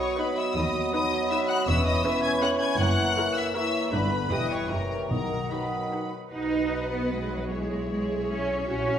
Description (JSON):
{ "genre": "classical, dramatic, fast romantic movement for symphony orchestra", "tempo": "146-163 BPM", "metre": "3/4", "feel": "rubato", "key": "B major", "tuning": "A4 = 441 Hz", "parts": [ { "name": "warm symphonic violin section", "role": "melody", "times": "0.0-9.0 s", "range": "E5 to G#6", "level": "-33 LUFS", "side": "left 4 dB", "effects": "none" }, { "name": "mellow cor anglais", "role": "second line", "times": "0.0-6.1 s", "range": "B4 to D#5", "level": "-35 LUFS", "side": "right 2 dB", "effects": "none" }, { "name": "small flute group", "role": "second line", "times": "0.0-6.1 s", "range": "F#5 to B5", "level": "-35 LUFS", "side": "equal", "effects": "none" }, { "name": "warm symphonic violin section", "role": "second line", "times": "0.0-9.0 s", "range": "A#4 to G#5", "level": "-33 LUFS", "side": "left 2 dB", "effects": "none" }, { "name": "clear bassoon", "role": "accompaniment", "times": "0.0-6.1 s", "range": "D3 to F#3", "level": "-31 LUFS", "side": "right 1 dB", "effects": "none" }, { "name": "rich symphonic viola section", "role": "accompaniment", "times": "0.0-9.0 s", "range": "C#4 to B4", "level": "-35 LUFS", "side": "right 2 dB", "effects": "none" }, { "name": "mellow French horn section", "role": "sustained chords", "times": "0.0-9.0 s", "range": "F#3 to G#4", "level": "-33 LUFS", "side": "left 2 dB", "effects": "none" }, { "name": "rich symphonic cello section", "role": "bass", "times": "0.6-9.0 s", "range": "D#2 to D#4", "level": "-30 LUFS", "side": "right 1 dB", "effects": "none" }, { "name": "rich symphonic double bass section", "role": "bass", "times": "0.6-9.0 s", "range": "E1 to D#2", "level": "-33 LUFS", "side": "right 1 dB", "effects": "none" }, { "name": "timpani", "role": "percussion", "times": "5.1-5.7 s", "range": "B2", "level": "-34 LUFS", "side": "left 1 dB", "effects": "none" } ], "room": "wet scoring stage reverb, RT60 1.6 s", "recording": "heard from further back in the room", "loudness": "-24 LUFS", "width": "side -9 dB against mid", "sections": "0.0-6.3 A section; 6.3-9.0 B section", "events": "none", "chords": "0.0 B; 0.6 B/D#; 1.7 C#m7/E; 2.8 F#7; 3.9 G; 4.3 C#m7b5/E; 4.7 F#7b9; 5.1 B; 7.5 C#m7/B" }